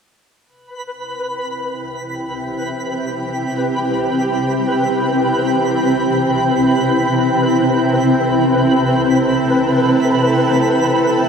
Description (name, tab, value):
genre	ambient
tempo	free time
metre	none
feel	none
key	C major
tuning	A4 = 440 Hz
part	granular cloud pad	sustained chords	1.8-11.3 s	C3 to G5	-15 LUFS	equal	built-in reverb
part	twinkling granular texture	texture	0.7-11.3 s	B4 to B5	-21 LUFS	equal	built-in reverb
room	wet lush hall reverb, RT60 3.0 s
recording	dark, warm production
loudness	-14 LUFS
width	side -6 dB against mid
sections	0.5-11.3 A section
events	none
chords	0.5 C